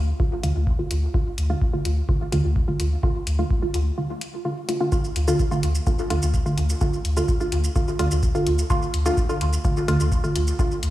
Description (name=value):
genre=dub techno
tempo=127 BPM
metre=4/4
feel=straight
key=D minor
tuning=A4 = 444 Hz
part: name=soft dub sub bass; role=bass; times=0.0-10.9 s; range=D2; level=-22 LUFS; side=equal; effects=tube saturation, sidechain pumping
part: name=filtered dub chord stab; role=stabs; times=0.2-10.8 s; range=D3 to F4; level=-24 LUFS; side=right 1 dB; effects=chorus, phaser, sidechain pumping, dub echo
part: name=electronic kick drum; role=drums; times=0.2-10.7 s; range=none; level=-24 LUFS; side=equal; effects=none
part: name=electronic hi-hat and shaker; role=drums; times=0.4-10.9 s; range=none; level=-34 LUFS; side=left 1 dB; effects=overdrive
room=light reverb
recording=played on a big sound system in a bare room, stone room reverb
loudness=-20 LUFS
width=side -15 dB against mid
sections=0.0-10.9 A section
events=filter sweep on synth stab 0.0-10.9; break 4.0-4.9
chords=0.0 Dm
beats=0.20 0.67 | 1.14 1.61 2.09 2.56 | 3.03 3.50 3.98 4.45 | 4.92 5.39 5.87 6.34 | 6.81 7.29 7.76 8.23 | 8.70 9.17 9.65 10.12 | 10.59